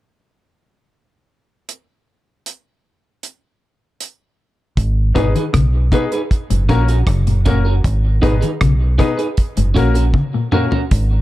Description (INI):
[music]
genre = roots reggae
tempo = 78 BPM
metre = 4/4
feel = straight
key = F# major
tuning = A4 = 440 Hz
[part]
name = damped 70s drum kit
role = drums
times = 1.7-11.1 s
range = hi-hat, kick drum, rim click, toms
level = -18 LUFS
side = equal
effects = none
[part]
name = deep dub fingered electric bass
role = bass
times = 4.8-11.2 s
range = F#1 to B1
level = -15 LUFS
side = equal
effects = none
[part]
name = bright upright piano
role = stabs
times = 5.1-10.7 s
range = A#3 to B4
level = -23 LUFS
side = left 5 dB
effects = none
[part]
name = electric guitar at the edge of break-up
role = accompaniment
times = 5.2-10.8 s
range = C#4 to B4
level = -23 LUFS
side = right 3 dB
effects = tape echo
[part]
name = mellow electric guitar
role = arpeggios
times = 5.2-10.7 s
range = G#2 to D#3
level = -21 LUFS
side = left 4 dB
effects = harmonic tremolo
[sound]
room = small room reverb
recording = dark, warm production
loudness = -14 LUFS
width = side -16 dB against mid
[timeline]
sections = 1.7-4.8 A section; 4.8-10.9 B section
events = drum fill 10.1-10.9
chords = 1.7 N.C.; 4.8 G#m; 6.3 F#; 7.8 G#m; 9.4 F#